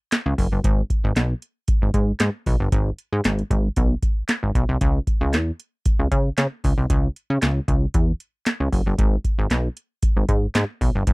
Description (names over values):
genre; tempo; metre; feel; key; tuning
early-eighties boogie funk; 115 BPM; 4/4; straight; unclear; A4 = 438 Hz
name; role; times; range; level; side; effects
booming analog drum machine; drums; 0.1-11.1 s; handclaps, hi-hat, kick drum, snare drum; -21 LUFS; equal; overdrive
plucky analog bass; bass; 0.3-11.1 s; F#1 to C#3; -21 LUFS; equal; none
room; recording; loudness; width
little or no reverb; dry, close 1970s-style studio recording; -19 LUFS; side -28 dB against mid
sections
0.0-11.1 A section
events
none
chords
none